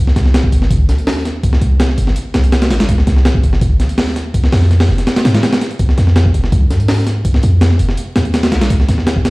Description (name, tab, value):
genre	drum and bass, jungle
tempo	165 BPM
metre	4/4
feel	straight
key	C minor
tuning	A4 = 441 Hz
part	breakbeat sampler-style drum kit	drums	0.1-9.3 s	hi-hat, kick drum, snare drum	-13 LUFS	equal	studio reverb
part	warm 808-style bass	bass	0.2-9.3 s	Eb1 to Ab2	-13 LUFS	equal	none
room	little or no reverb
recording	played on a big sound system in a bare room, large studio reverb, vinyl crackle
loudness	-11 LUFS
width	side -23 dB against mid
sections	0.0-9.3 A section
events	none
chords	none